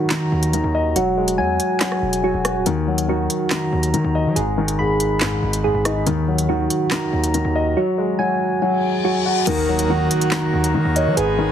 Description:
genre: hip hop, drill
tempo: 141 BPM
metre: 4/4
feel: half-time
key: Eb phrygian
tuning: A4 = 441 Hz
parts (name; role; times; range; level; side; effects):
- dark grand piano; accompaniment; 0.0-11.5 s; Ab2 to Eb5; -21 LUFS; left 2 dB; low-pass filter
- soft electric-piano-like synth keys; arpeggios; 0.0-11.5 s; Eb3 to Cb6; -22 LUFS; right 2 dB; chorus, low-pass filter, ping-pong delay
- drill drum kit; drums; 0.1-11.3 s; crash cymbal, handclaps, hi-hat, rim click, snare drum; -24 LUFS; equal; none
- hard-hitting 808-style bass; bass; 0.3-11.5 s; Eb1 to Gb3; -25 LUFS; equal; none
- reverse cymbal and impact; sound effects; 8.8-11.2 s; none; -29 LUFS; left 5 dB; none
- warm velvety synth lead; second line; 9.5-11.5 s; Bb4 to Db5; -25 LUFS; right 1 dB; chorus, ping-pong delay
- pipe organ, full organ; sustained chords; 9.5-11.5 s; Eb3 to Ab4; -25 LUFS; equal; none
room: little or no reverb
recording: heavily compressed radio sound, multiband compression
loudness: -17 LUFS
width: side -9 dB against mid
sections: 0.0-9.5 A section; 9.5-11.5 B section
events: reverse cymbal 8.8-9.5; impact 9.5-11.2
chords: 0.0 Ebm; 1.0 Eadd9; 2.7 Ebm; 4.4 Abm; 6.1 Ebm; 7.8 Gbsus2; 9.5 Ebm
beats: 0.11 0.53 | 0.96 1.39 1.81 2.24 | 2.66 3.09 3.51 3.94 | 4.36 4.79 5.21 5.64 | 6.07 6.49 6.92 7.34 | 7.77 8.19 8.62 9.04 | 9.47 9.89 10.32 10.75 | 11.17

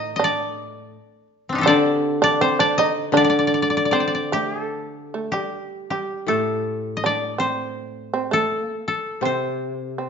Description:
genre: japanese traditional, Japanese chamber music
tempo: 74-84 BPM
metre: 2/4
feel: rubato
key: D in sen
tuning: A4 = 439 Hz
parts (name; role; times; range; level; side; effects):
- koto; melody; 0.0-10.1 s; C4 to G5; -22 LUFS; left 2 dB; none
- shamisen; second line; 0.0-10.1 s; G3 to Eb4; -24 LUFS; right 6 dB; none
- koto; accompaniment; 0.0-10.1 s; A2 to D3; -24 LUFS; left 2 dB; none
room: moderate recital hall reverb, RT60 1.4 s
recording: nothing above 7.6 kHz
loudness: -19 LUFS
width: side -6 dB against mid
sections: 0.0-4.7 A section; 4.7-10.1 B section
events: none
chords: none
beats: | 0.21 0.95 | 1.68 2.41 | 3.15 3.93 | 4.74 5.53 | 6.29 7.04 | 7.78 8.51 | 9.23 9.98

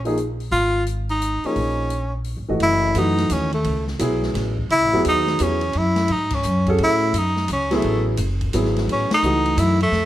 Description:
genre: modal jazz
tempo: 172 BPM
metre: 3/4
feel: swing 65% on 8ths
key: F# dorian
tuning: A4 = 440 Hz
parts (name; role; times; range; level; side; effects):
- warm tenor saxophone; melody; 0.0-10.1 s; A3 to F4; -20 LUFS; equal; none
- warm baby grand piano; accompaniment; 0.0-9.8 s; E3 to Eb5; -23 LUFS; equal; none
- upright bass; bass; 0.0-10.1 s; F#1 to A2; -23 LUFS; equal; none
- open jazz drum kit; drums; 0.1-10.0 s; crash cymbal, hi-hat, kick drum, ride cymbal, snare drum; -31 LUFS; left 2 dB; none
room: light reverb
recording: none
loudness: -18 LUFS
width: side -13 dB against mid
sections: 0.0-2.6 A section; 2.6-10.1 B section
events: band accent 6.3, 9.1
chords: 0.0 Db; 2.6 F#m9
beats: 0.16 | 0.51 0.86 1.21 | 1.56 1.91 2.26 | 2.60 2.95 3.30 | 3.65 4.00 4.35 | 4.70 5.04 5.39 | 5.74 6.09 6.44 | 6.79 7.13 7.48 | 7.83 8.18 8.53 | 8.88 9.22 9.57 | 9.92

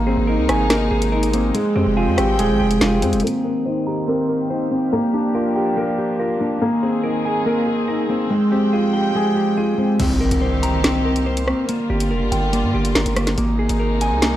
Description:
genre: hip hop, drill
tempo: 142 BPM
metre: 4/4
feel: half-time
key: C minor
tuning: A4 = 440 Hz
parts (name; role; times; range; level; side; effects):
- felt-muted upright piano; accompaniment; 0.0-10.0 s; Ab3 to Bb4; -22 LUFS; left 1 dB; low-pass filter
- warm chamber string section; sustained chords; 0.0-14.4 s; C3 to G5; -26 LUFS; left 1 dB; low-pass filter
- clean electric guitar; arpeggios; 0.0-14.4 s; Ab3 to Bb5; -20 LUFS; right 1 dB; low-pass filter, tape echo
- distorted 808-style bass; bass; 0.0-3.2, 10.0-14.4 s; Eb1 to G2; -21 LUFS; equal; distortion
- drill drum kit; drums; 0.5-3.3, 10.0-14.3 s; crash cymbal, hi-hat, rim click, snare drum; -22 LUFS; equal; overdrive
- impact; sound effects; 10.0-11.7 s; none; -28 LUFS; equal; none
room: light reverb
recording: dry, gritty hardware recording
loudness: -16 LUFS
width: side -13 dB against mid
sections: 0.0-3.2 A section; 3.2-10.0 B section; 10.0-14.4 C section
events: filter sweep 3.2-10.0; impact 10.0-11.7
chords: 0.0 Abadd9; 1.5 Fmadd9; 3.2 Cm7; 4.9 Gm7; 6.6 Abadd9; 8.3 Fmadd9; 10.0 Cm7; 11.7 Gm7; 13.4 Abadd9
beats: 0.28 0.70 1.12 | 1.54 1.97 2.39 2.81 | 3.23 3.66 4.08 4.50 | 4.92 5.35 5.77 6.19 | 6.62 7.04 7.46 7.88 | 8.31 8.73 9.15 9.57 | 10.00 10.42 10.84 11.26 | 11.69 12.11 12.53 12.95 | 13.38 13.80 14.22

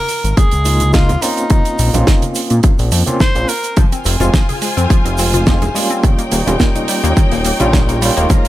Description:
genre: nu-disco, nu disco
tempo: 106 BPM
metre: 4/4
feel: swing 54% on 16ths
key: unclear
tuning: A4 = 440 Hz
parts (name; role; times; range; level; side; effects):
- breathy tenor saxophone; melody; 0.0-3.8 s; Eb4 to C5; -21 LUFS; equal; dub echo
- damped 70s drum kit; drums; 0.1-8.5 s; hi-hat, shaker, snare drum; -20 LUFS; right 3 dB; studio reverb
- fat analog bass; bass; 0.2-8.3 s; Eb1 to Bb2; -15 LUFS; equal; tube saturation, sidechain pumping
- electronic kick drum; drums; 0.4-8.4 s; none; -12 LUFS; equal; studio reverb
- overdriven tine electric piano; accompaniment; 0.6-8.5 s; F3 to F4; -20 LUFS; right 1 dB; fast tremolo, sidechain pumping, tape echo
- congas; percussion; 0.8-8.4 s; none; -24 LUFS; right 2 dB; none
- rich studio string section; sustained chords; 3.8-8.5 s; Eb4 to Bb5; -21 LUFS; left 2 dB; sidechain pumping
- analog pluck; arpeggios; 3.8-8.5 s; Eb3 to Ab4; -23 LUFS; left 4 dB; chorus, sidechain pumping, dub echo
room: studio reverb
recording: none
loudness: -11 LUFS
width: side -15 dB against mid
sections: 0.0-8.5 A section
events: none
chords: 0.0 Db6; 1.5 Bbmadd9; 3.8 Fm; 6.0 Eb7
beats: 0.38 0.94 | 1.51 2.07 2.64 3.21 | 3.77 4.34 4.90 5.47 | 6.04 6.60 7.17 7.73 | 8.30

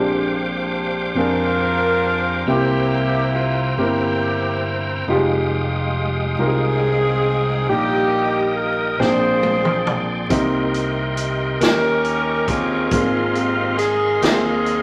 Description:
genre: slow gospel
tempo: 46 BPM (dotted quarters)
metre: 6/8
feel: straight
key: Eb major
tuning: A4 = 441 Hz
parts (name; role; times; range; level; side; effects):
- dark upright piano; accompaniment; 0.0-14.8 s; Ab2 to G5; -25 LUFS; equal; none
- bright tonewheel organ; sustained chords; 0.0-14.8 s; Ab3 to E6; -28 LUFS; equal; fast rotary speaker, chorus vibrato
- fingered electric bass; bass; 0.0-14.8 s; F1 to F2; -27 LUFS; equal; none
- clear saxophone section; melody; 1.2-14.8 s; Bb3 to C5; -22 LUFS; equal; none
- swinging big-band drum kit; drums; 9.0-14.8 s; hi-hat, kick drum, snare drum, toms; -25 LUFS; equal; none
room: moderate large studio reverb, RT60 1.1 s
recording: vinyl crackle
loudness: -19 LUFS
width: mono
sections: 0.0-14.8 A section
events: drum fill 9.0-10.3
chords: 0.0 Bb13; 2.5 C7; 5.1 Fm9; 7.7 Eb/Bb; 9.0 Bb13; 10.3 Cm7; 11.6 Eb7; 12.9 Ab69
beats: 1.16 | 2.47 3.77 | 5.08 6.39 | 7.69 9.00 | 10.30 11.61 | 12.91 14.22

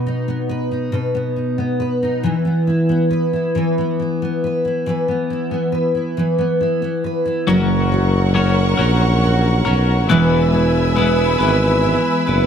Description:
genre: six-eight pop ballad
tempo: 46 BPM (dotted quarters)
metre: 6/8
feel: straight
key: unclear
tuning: A4 = 442 Hz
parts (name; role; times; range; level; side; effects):
- picked steel-string acoustic guitar; accompaniment; 0.0-12.5 s; B2 to B4; -18 LUFS; equal; double-tracked left and right
- rich symphonic string section; sustained chords; 7.5-12.5 s; A#4 to E6; -21 LUFS; right 1 dB; none
- twelve-string electric guitar; arpeggios; 7.5-12.5 s; E3 to B4; -21 LUFS; left 6 dB; tremolo, tape echo
- mellow tuba; bass; 7.5-12.5 s; E1 to B1; -17 LUFS; equal; none
room: moderate scoring stage reverb, RT60 1.6 s, small room ambience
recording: dark, warm production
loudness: -15 LUFS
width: side -8 dB against mid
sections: 0.0-7.5 A section; 7.5-12.5 B section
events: none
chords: 0.0 B; 2.2 E5; 7.5 F#; 10.1 E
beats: 0.93 | 2.24 3.55 | 4.86 6.17 | 7.47 8.78 | 10.09 11.40

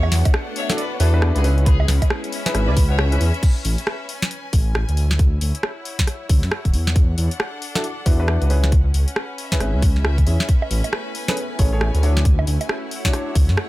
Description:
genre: UK garage, two-step garage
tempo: 136 BPM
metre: 4/4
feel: swing 62% on 16ths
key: A major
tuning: A4 = 441 Hz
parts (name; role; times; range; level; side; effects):
- rich chamber violin section; melody; 0.0-3.0 s; G#4 to F#5; -30 LUFS; equal; digital delay
- soft string machine; sustained chords; 0.0-3.4, 10.5-13.7 s; G#3 to F#4; -33 LUFS; equal; ensemble chorus, sidechain pumping
- dark detuned saw bass; bass; 0.0-13.6 s; D1 to F#2; -18 LUFS; equal; tube saturation
- punchy analog drum machine; drums; 0.0-13.7 s; bongos, crash cymbal, hi-hat, rim click, snare drum; -25 LUFS; equal; none
- clear studio string section; texture; 0.0-13.7 s; C#4 to G#5; -33 LUFS; left 2 dB; sidechain pumping
- electronic kick drum; drums; 0.3-13.5 s; none; -17 LUFS; equal; none
- dark grand piano; stabs; 0.7-3.2, 7.8-13.3 s; C#4 to E5; -27 LUFS; left 1 dB; digital delay
room: little or no reverb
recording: none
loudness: -17 LUFS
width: side -18 dB against mid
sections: 0.0-3.4 A section; 3.4-13.7 B section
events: drop 0.0-3.4; kick drops out 3.0-3.4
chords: 0.0 E9sus4; 1.4 C#m7; 3.4 Amaj9; 5.0 Dmaj9; 6.7 E9sus4; 8.5 C#m7; 10.5 Amaj9; 12.0 Dmaj9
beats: 0.34 0.78 1.22 | 1.66 2.10 2.54 2.99 | 3.43 3.87 4.31 4.75 | 5.19 5.63 6.08 6.52 | 6.96 7.40 7.84 8.28 | 8.72 9.16 9.60 10.04 | 10.49 10.93 11.37 11.81 | 12.25 12.69 13.13 13.57

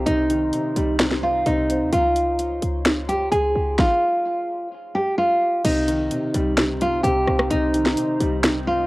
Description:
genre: hip hop, trap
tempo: 129 BPM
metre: 4/4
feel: half-time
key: C phrygian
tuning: A4 = 438 Hz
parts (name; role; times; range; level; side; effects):
- nylon-string guitar; melody; 0.0-8.9 s; Eb4 to Ab4; -20 LUFS; equal; low-pass filter, cassette tape, tape echo
- dark grand piano; accompaniment; 0.0-1.9, 5.6-8.9 s; C3 to C4; -27 LUFS; equal; low-pass filter, cassette tape
- deep dark ambient pad; sustained chords; 0.0-8.9 s; Eb4 to C6; -34 LUFS; right 2 dB; chorus, built-in reverb, cassette tape
- short 808-style bass; bass; 0.0-8.9 s; C2 to Eb2; -26 LUFS; equal; none
- trap drum kit; drums; 0.1-8.5 s; crash cymbal, finger snaps, hi-hat, kick drum, rim click, snare drum; -21 LUFS; equal; overdrive
room: light reverb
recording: home recording on cassette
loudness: -18 LUFS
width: side -20 dB against mid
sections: 0.0-5.6 A section; 5.6-8.9 B section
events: none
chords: 0.0 Cm7; 1.9 Dbmaj7; 5.6 Cm7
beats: | 0.07 0.53 1.00 1.46 | 1.93 2.39 2.86 3.32 | 3.79 4.25 4.72 5.18 | 5.65 6.11 6.58 7.04 | 7.51 7.97 8.44

